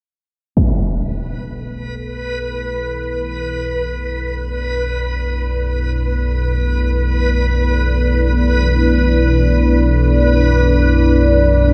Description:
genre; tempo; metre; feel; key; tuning
dark ambient drone; free time; none; none; B minor; A4 = 435 Hz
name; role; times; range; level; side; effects
dark analog pad; sustained chords; 1.2-11.7 s; B3 to D5; -22 LUFS; equal; chorus, phaser
deep rumbling drone; drone; 1.5-11.7 s; B1 to F#2; -19 LUFS; equal; built-in reverb, subtle chorus
impact; percussion; 0.6-0.8 s; none; -20 LUFS; equal; low-pass filter on sfx
backwards swelling texture; texture; 1.4-11.7 s; B4; -24 LUFS; equal; built-in reverb
room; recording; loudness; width
moderate lush hall reverb, RT60 3.0 s; dreamy mix soaked in reverb; -16 LUFS; mono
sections
0.6-11.7 A section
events
none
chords
0.6 Bm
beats
free time

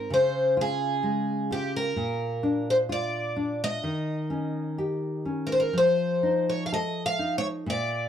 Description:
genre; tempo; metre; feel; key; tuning
fado-style ballad; 64 BPM; 2/4; rubato; unclear; A4 = 438 Hz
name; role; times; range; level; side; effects
picked twelve-string acoustic guitar; melody; 0.0-8.1 s; G4 to F5; -25 LUFS; equal; none
nylon-string guitar; accompaniment; 0.0-8.1 s; Bb2 to A4; -29 LUFS; equal; none
room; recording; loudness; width
light reverb; dark, warm production; -24 LUFS; side -9 dB against mid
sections
0.0-8.1 A section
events
none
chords
0.1 Db; 2.0 Bb; 3.8 Eb7; 5.8 F7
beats
| 0.10 1.04 | 1.96 2.90 | 3.83 4.78 | 5.75 6.72 | 7.68

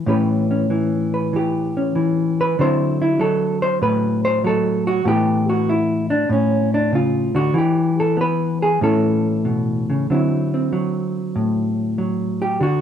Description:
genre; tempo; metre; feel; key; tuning
solo jazz; 96 BPM; 4/4; swing 68% on 8ths, rubato; unclear; A4 = 440 Hz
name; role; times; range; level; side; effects
hollow-body jazz guitar; solo; 0.0-12.8 s; A2 to C5; -17 LUFS; equal; none
room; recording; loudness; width
light reverb; close, detailed microphones, lossy compression artefacts; -17 LUFS; side -8 dB against mid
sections
0.1-12.8 A section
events
hollow-body jazz guitar solo 0.1-12.8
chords
0.1 A9; 2.6 D9; 5.1 Aadd9; 7.5 E5; 8.8 Aadd9; 10.1 D9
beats
| 0.06 0.70 1.33 1.96 | 2.59 3.21 3.82 4.45 | 5.06 5.68 6.30 6.92 | 7.55 8.17 8.81 9.46 | 10.10 10.73 11.36 11.98 | 12.61

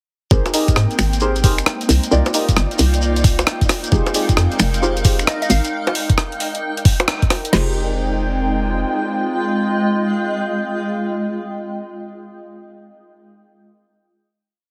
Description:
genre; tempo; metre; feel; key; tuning
UK garage, two-step garage; 133 BPM; 4/4; swing 65% on 16ths; F dorian; A4 = 440 Hz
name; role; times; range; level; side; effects
airy breathy pad; sustained chords; 0.3-11.7 s; Ab3 to G5; -28 LUFS; equal; chorus, sidechain pumping
deep mellow chord stab; stabs; 0.3-11.7 s; Eb4 to Eb5; -25 LUFS; equal; chorus, phaser, delay
hollow knocking FM bass; bass; 0.3-8.8 s; F1 to Ab2; -20 LUFS; equal; sidechain pumping
garage drum kit; drums; 0.3-7.7 s; crash cymbal, kick drum, snare drum; -19 LUFS; equal; none
shekere; percussion; 0.3-5.7 s; none; -29 LUFS; equal; none
granular cloud pad; texture; 1.8-11.9 s; Ab3 to G5; -26 LUFS; equal; built-in reverb, sidechain pumping
breakbeat sampler-style drum kit; drums; 0.5-7.5 s; bongos, finger snaps, hi-hat, rim click; -23 LUFS; equal; none
glassy wavetable pluck; melody; 5.3-5.7 s; Eb5 to F5; -28 LUFS; equal; chorus, delay
room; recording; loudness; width
light reverb, digital ambience; heavily compressed radio sound; -18 LUFS; mono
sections
0.3-7.5 drop; 7.5-11.1 final chord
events
drop 0.3-7.5; band accent 7.1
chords
0.3 Abmaj7; 2.1 Cm11; 3.9 Fm9; 5.7 Ebmaj7; 7.5 Fm9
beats
| 0.31 0.76 1.21 1.66 | 2.12 2.57 3.02 3.47 | 3.92 4.37 4.82 5.27 | 5.72 6.17 6.63 7.08 | 7.53 7.98 8.43 8.88 | 9.33 9.78 10.23 10.69

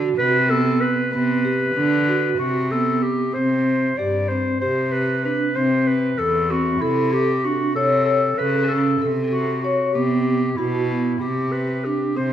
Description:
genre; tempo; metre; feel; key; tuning
contemporary instrumental, chamber music in an uneven meter; 190 BPM (eighths); 7/8; straight; C lydian; A4 = 440 Hz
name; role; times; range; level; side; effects
vibraphone with soft mallets; arpeggios; 0.0-12.3 s; B3 to C#5; -22 LUFS; right 2 dB; none
rich cello; bass; 0.0-12.3 s; E2 to D3; -24 LUFS; left 1 dB; none
mellow clarinet; melody; 0.2-12.3 s; E4 to D5; -22 LUFS; left 1 dB; none
room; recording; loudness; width
moderate recital hall reverb, RT60 1.4 s; none; -18 LUFS; side -10 dB against mid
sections
0.0-3.4 A section; 3.4-12.3 B section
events
none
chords
0.0 Gmaj7/C (rootless); 3.4 C5; 5.6 Am; 7.8 F#m; 10.0 Em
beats
0.18 0.50 0.81 | 1.13 1.44 1.76 2.08 2.40 2.72 3.04 | 3.36 3.67 3.99 4.31 4.62 4.94 5.25 | 5.57 5.88 6.19 6.50 6.82 7.13 7.44 | 7.76 8.07 8.39 8.70 9.01 9.33 9.64 | 9.95 10.27 10.59 10.90 11.22 11.54 11.86 | 12.18

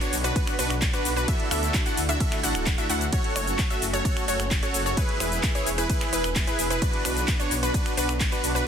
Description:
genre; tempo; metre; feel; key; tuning
EDM, festival progressive house; 130 BPM; 4/4; straight; unclear; A4 = 440 Hz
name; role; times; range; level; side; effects
lush unison pad; sustained chords; 0.0-8.7 s; D3 to B4; -35 LUFS; equal; chorus, sidechain pumping
wide unison pluck; arpeggios; 0.0-8.6 s; B4 to F#5; -31 LUFS; right 1 dB; sidechain pumping, tape echo
dense compressed supersaw; riff; 0.0-8.6 s; D4 to F#5; -29 LUFS; equal; sidechain pumping, tape echo
house drum kit; drums; 0.0-8.6 s; finger snaps, handclaps, hi-hat, ride cymbal, shaker; -29 LUFS; left 1 dB; none
wide detuned saw bass; bass; 0.1-8.6 s; D1 to D2; -30 LUFS; equal; chorus, sidechain pumping
electronic kick drum; drums; 0.4-8.3 s; none; -26 LUFS; equal; none
room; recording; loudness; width
digital ambience; dense, heavily limited modern master; -22 LUFS; side -8 dB against mid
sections
0.0-8.7 A section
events
none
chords
0.0 Bm; 1.3 Dadd9; 3.1 F#m; 5.0 E; 6.8 Bm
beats
0.36 0.82 | 1.28 1.74 2.20 2.67 | 3.13 3.59 4.05 4.51 | 4.97 5.43 5.90 6.36 | 6.82 7.28 7.74 8.20 | 8.67

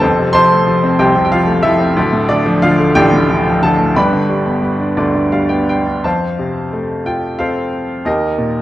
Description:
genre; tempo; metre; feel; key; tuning
classical, lyrical solo piano; 82-94 BPM; 3/4; rubato; F lydian; A4 = 439 Hz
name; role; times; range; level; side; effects
bright baby grand piano; solo; 0.0-8.6 s; D1 to C6; -12 LUFS; equal; none
room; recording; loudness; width
moderate recital hall reverb, RT60 1.4 s; dark, warm production; -12 LUFS; side -14 dB against mid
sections
0.0-6.0 A section; 6.0-8.6 B section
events
grand piano fill 4.6-6.0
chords
0.0 Fadd9; 2.0 Dm; 4.0 G; 6.0 F; 8.1 Eb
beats
| 0.03 0.68 1.31 | 1.96 2.63 3.30 | 3.97 4.64 5.34 | 6.05 6.73 7.40 | 8.06

